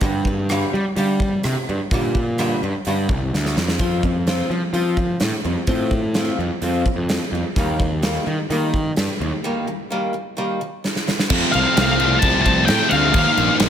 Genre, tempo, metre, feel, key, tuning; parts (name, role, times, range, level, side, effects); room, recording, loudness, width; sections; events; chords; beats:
quiet-loud alternative rock; 128 BPM; 4/4; straight; A4 = 440 Hz
picked acoustic archtop guitar; arpeggios; 0.0-11.3 s; G2 to F4; -25 LUFS; equal
fuzz picked electric bass; bass; 0.0-13.7 s; Bb1 to G3; -22 LUFS; equal; overdrive
huge arena drum kit; drums; 0.0-13.7 s; crash cymbal, hi-hat, kick drum, rim click, snare drum; -22 LUFS; equal
distorted electric guitar; riff; 11.3-13.7 s; F2 to Eb4; -18 LUFS; right 1 dB; distortion
octave-fuzz lead guitar; melody; 11.5-13.6 s; F5 to A5; -18 LUFS; left 2 dB; distortion, slapback echo
small room reverb; -17 LUFS; side -9 dB against mid
0.0-11.3 A section; 11.3-13.7 B section
drum fill 3.3-3.8, 10.8-11.3; break 9.4-11.3
0.0 Gm; 3.8 F; 7.6 Eb; 11.3 F; 13.1 Ebsus2
| 0.02 0.49 0.96 1.44 | 1.91 2.38 2.86 3.33 | 3.80 4.27 4.74 5.21 | 5.69 6.16 6.63 7.10 | 7.57 8.04 8.51 8.97 | 9.44 9.91 10.37 10.84 | 11.30 11.77 12.23 12.69 | 13.15 13.61